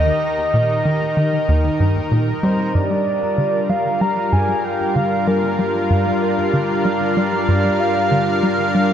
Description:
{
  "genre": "ambient, sequencer-driven space music",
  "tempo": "95 BPM",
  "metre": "4/4",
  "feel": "straight",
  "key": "unclear",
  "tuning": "A4 = 438 Hz",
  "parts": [
    { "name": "soft octave-layered synth lead", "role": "melody", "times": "0.0-8.9 s", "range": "Bb4 to Bb5", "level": "-22 LUFS", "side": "equal", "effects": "chorus, cassette tape, shimmer reverb, tape echo" },
    { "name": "lush unison pad", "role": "sustained chords", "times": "0.0-8.9 s", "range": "Eb3 to Bb5", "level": "-19 LUFS", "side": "equal", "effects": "chorus, shimmer reverb" },
    { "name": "tight sequencer bass", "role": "riff", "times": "0.0-8.9 s", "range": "Eb2 to G3", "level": "-20 LUFS", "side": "equal", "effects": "tape echo" },
    { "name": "analog drone", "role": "bass", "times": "4.2-8.9 s", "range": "G2", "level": "-32 LUFS", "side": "equal", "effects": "chorus, phaser" },
    { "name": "wind-like tuned noise texture", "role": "texture", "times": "3.6-8.9 s", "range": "G3 to G6", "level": "-37 LUFS", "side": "equal", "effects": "none" }
  ],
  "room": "wet concert hall reverb, RT60 2.3 s",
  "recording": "none",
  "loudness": "-16 LUFS",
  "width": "side -9 dB against mid",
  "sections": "0.0-2.7 A section; 2.7-8.9 B section",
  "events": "fade-in on synth drone 2.7-8.9; filter sweep on analog synth bass 2.7-8.9",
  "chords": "0.0 Eb; 2.7 Gm7"
}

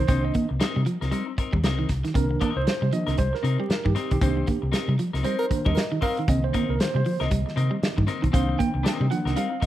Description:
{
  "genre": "funk",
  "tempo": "116 BPM",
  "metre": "4/4",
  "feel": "swing 60% on 16ths",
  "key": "C minor",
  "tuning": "A4 = 444 Hz",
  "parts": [
    { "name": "clean electric guitar", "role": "accompaniment", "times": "0.0-9.7 s", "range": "C4 to C5", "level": "-32 LUFS", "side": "left 7 dB", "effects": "none" },
    { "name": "electric guitar at the edge of break-up", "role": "riff", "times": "0.0-9.6 s", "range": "Eb3 to C4", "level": "-30 LUFS", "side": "right 3 dB", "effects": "spring reverb" },
    { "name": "tine electric piano", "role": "stabs", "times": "0.0-9.7 s", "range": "D3 to G5", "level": "-28 LUFS", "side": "right 2 dB", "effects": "medium stereo tremolo" },
    { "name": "hollow-body short-scale fingered electric bass", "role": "bass", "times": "0.0-9.7 s", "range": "B1 to C3", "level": "-25 LUFS", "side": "equal", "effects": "none" },
    { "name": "warm soul drum kit", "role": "drums", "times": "0.1-9.7 s", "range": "hi-hat, kick drum, snare drum", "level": "-26 LUFS", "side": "equal", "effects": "none" },
    { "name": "breathy tenor saxophone", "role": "second line", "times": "5.4-6.2 s", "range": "Bb4", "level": "-30 LUFS", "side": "right 1 dB", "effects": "none" }
  ],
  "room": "studio reverb",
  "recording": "rough home demo mix, vinyl crackle",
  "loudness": "-22 LUFS",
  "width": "side -13 dB against mid",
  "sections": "0.0-9.7 A section",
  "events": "tine electric piano solo 0.0-9.7; band accent 4.2-6.3",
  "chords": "0.0 Cm7"
}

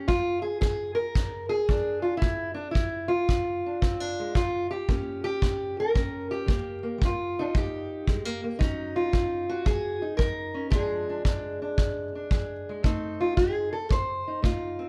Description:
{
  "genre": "acoustic country blues, solo or duo",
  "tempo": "113 BPM",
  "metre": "4/4",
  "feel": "swing 68% on 8ths",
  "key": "unclear",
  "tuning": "A4 = 442 Hz",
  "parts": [
    { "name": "fingerpicked steel-string acoustic guitar", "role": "melody", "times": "0.0-14.9 s", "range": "F2 to C5", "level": "-30 LUFS", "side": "equal", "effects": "plate reverb" },
    { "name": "kick drum", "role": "drums", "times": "0.1-14.6 s", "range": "none", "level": "-30 LUFS", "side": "equal", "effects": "none" }
  ],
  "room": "light reverb",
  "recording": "none",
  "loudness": "-28 LUFS",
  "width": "mono",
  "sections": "0.0-14.9 A section",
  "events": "none",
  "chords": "0.1 Bb7; 4.4 Eb7; 8.6 Ebm7; 10.7 Bb7; 12.9 F7"
}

